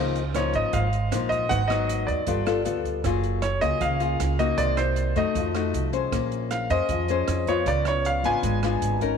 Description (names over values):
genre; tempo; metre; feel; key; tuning
bossa nova; 156 BPM; 4/4; straight; Db major; A4 = 442 Hz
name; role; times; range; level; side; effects
nylon-string guitar; accompaniment; 0.0-9.2 s; Ab2 to C5; -26 LUFS; left 10 dB; none
upright bass; bass; 0.0-9.2 s; Gb1 to Gb2; -27 LUFS; right 3 dB; none
open jazz drum kit; drums; 0.2-9.1 s; hi-hat, kick drum, rim click; -34 LUFS; right 9 dB; none
clear baby grand piano; melody; 0.4-9.0 s; C5 to Ab5; -27 LUFS; right 2 dB; tape echo
room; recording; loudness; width
moderate plate reverb, RT60 2.0 s, small room ambience; 1960s-style stereo with parts hard left and right; -22 LUFS; side -6 dB against mid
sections
0.0-9.2 A section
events
none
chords
0.0 Db69; 1.5 Abm7; 2.3 G9; 3.0 Gbmaj9; 4.6 Cm7b5; 5.4 F7b9; 6.1 Bbm9; 7.7 Db7b9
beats
0.35 0.74 1.12 | 1.51 1.89 2.28 2.66 | 3.05 3.43 3.82 4.20 | 4.59 4.97 5.36 5.74 | 6.13 6.51 6.90 7.28 | 7.67 8.05 8.44 8.82